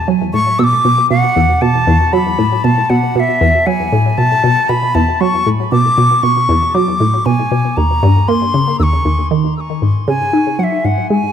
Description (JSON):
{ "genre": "ambient, sequencer-driven space music", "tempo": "117 BPM", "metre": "4/4", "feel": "straight", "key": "unclear", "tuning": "A4 = 440 Hz", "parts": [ { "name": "wooden flute", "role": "melody", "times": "0.0-11.3 s", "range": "E5 to E6", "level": "-15 LUFS", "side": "left 1 dB", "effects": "ping-pong delay" }, { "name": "resonant blip pluck", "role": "riff", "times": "0.1-11.2 s", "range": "D#2 to D#4", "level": "-13 LUFS", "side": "equal", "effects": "chorus, cassette tape, ping-pong delay" } ], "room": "moderate plate reverb, RT60 2.4 s", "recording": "none", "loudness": "-11 LUFS", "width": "side -8 dB against mid", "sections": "0.0-9.8 A section; 9.8-11.3 B section", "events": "none", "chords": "0.0 B7(no3); 7.8 D#7(no3); 9.8 G#7(no3)" }